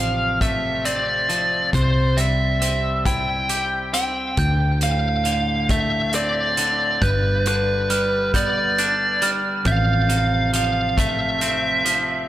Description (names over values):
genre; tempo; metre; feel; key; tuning
post-rock; 45 BPM (dotted quarters); 6/8; straight; unclear; A4 = 439 Hz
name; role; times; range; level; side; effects
biting lead guitar; melody; 0.0-12.3 s; B4 to G5; -21 LUFS; right 1 dB; overdrive, digital delay
twangy electric guitar; arpeggios; 0.0-12.3 s; D2 to G4; -26 LUFS; left 1 dB; digital delay
hollow-body short-scale fingered electric bass; bass; 0.0-12.3 s; G1 to D2; -24 LUFS; equal; none
loose indie drum kit; drums; 0.4-12.1 s; hi-hat, kick drum; -26 LUFS; equal; none
glockenspiel with soft plastic mallets; arpeggios; 4.4-11.4 s; F6 to F7; -28 LUFS; right 5 dB; digital delay
room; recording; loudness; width
light reverb, small room ambience; none; -18 LUFS; side -13 dB against mid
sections
0.0-12.3 A section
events
none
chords
0.0 F/A; 1.7 C; 4.4 Dm7; 7.0 G7; 9.7 Fmaj7/A